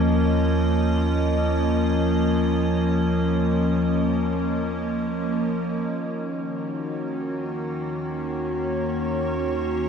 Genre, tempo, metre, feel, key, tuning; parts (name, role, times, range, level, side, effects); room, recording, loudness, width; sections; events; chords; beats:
ambient; free time; Eb minor; A4 = 435 Hz
evolving wavetable pad; sustained chords; 0.0-9.9 s; Eb3 to Eb5; -22 LUFS; equal; chorus, built-in reverb, shimmer reverb
round analog bass; bass; 0.0-9.9 s; Eb2; -27 LUFS; equal
wet cathedral reverb, RT60 6.2 s; dark, warm production; -21 LUFS; side -6 dB against mid
0.0-5.9 A section; 5.9-9.9 B section
0.0 Bbm/Eb; 5.9 Ebm7
free time